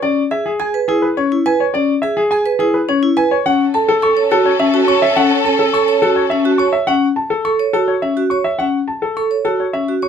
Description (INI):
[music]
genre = classical, minimalist pattern music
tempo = 105 BPM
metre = 3/4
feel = straight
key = unclear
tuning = A4 = 441 Hz
[part]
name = clear grand piano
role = melody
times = 0.0-10.1 s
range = G#4 to C#6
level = -17 LUFS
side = left 2 dB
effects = none
[part]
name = vibraphone with medium hard mallets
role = arpeggios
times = 0.0-10.1 s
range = C#4 to C#5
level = -15 LUFS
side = right 1 dB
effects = none
[part]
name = warm studio string section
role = sustained chords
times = 3.5-6.7 s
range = C#4 to A4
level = -19 LUFS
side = left 1 dB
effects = none
[sound]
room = little or no reverb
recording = close, detailed microphones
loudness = -13 LUFS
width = side -8 dB against mid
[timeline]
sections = 0.0-10.1 A section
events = none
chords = 0.0 E; 3.5 A